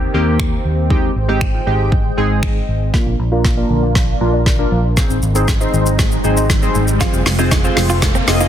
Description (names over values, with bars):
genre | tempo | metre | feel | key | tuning
dance-pop | 118 BPM | 4/4 | straight | unclear | A4 = 440 Hz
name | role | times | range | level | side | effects
lush unison pad | sustained chords | 0.0-8.5 s | Eb3 to G5 | -23 LUFS | equal | chorus, phaser, sidechain pumping, low-pass filter
vintage muted fingered electric bass | bass | 0.0-8.5 s | F1 to Eb2 | -18 LUFS | equal | sidechain pumping
chorused retro synth keys | accompaniment | 0.1-8.5 s | Ab3 to Eb5 | -20 LUFS | equal | sidechain pumping, low-pass filter
deep house drum kit | drums | 0.4-8.5 s | finger snaps, hi-hat, kick drum, shaker, snare drum | -17 LUFS | equal | soft clipping on snare
mallet-like synth pluck | arpeggios | 2.9-8.5 s | D3 to F5 | -24 LUFS | equal | chorus, phaser, sidechain pumping, low-pass filter, digital delay
riser | sound effects | 4.9-8.5 s | none | -26 LUFS | equal | none
direct-recorded clean electric guitar | riff | 7.0-8.5 s | C4 to F4 | -24 LUFS | right 5 dB | lush chorus, low-pass filter
room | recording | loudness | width
little or no reverb | dense, heavily limited modern master | -13 LUFS | side -10 dB against mid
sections
0.0-2.9 A section; 2.9-8.5 B section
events
synth keys fill 2.2-2.9; build-up 2.9-8.5; drum fill 2.9-8.5; filter sweep 2.9-8.5; riser 4.9-8.5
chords
0.0 Eb6; 0.9 Abmaj7; 2.9 Bb; 5.0 Ab; 7.0 Fm